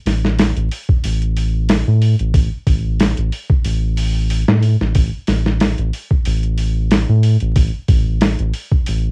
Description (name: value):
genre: trip hop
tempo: 92 BPM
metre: 4/4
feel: swing 54% on 16ths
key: unclear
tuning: A4 = 439 Hz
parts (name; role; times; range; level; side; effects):
- round analog bass; bass; 0.1-9.1 s; A1 to A2; -15 LUFS; equal; none
- boom bap sampler-style drum kit; drums; 0.1-9.0 s; hi-hat, kick drum, snare drum; -16 LUFS; equal; cassette tape
room: little or no reverb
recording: home recording on cassette, vinyl crackle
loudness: -14 LUFS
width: side -39 dB against mid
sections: 0.0-9.1 A section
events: none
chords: none